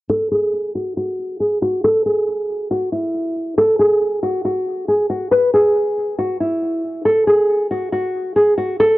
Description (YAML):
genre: hip hop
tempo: 138 BPM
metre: 4/4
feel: half-time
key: F# minor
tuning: A4 = 441 Hz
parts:
  - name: nylon-string guitar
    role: melody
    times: 0.1-9.0 s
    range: E4 to B4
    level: -15 LUFS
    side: equal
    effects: low-pass filter
room: small room reverb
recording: dry, gritty hardware recording, cassette tape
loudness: -16 LUFS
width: side -17 dB against mid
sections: 0.1-9.0 A section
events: filter sweep on nylon-string guitar 0.1-9.0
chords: none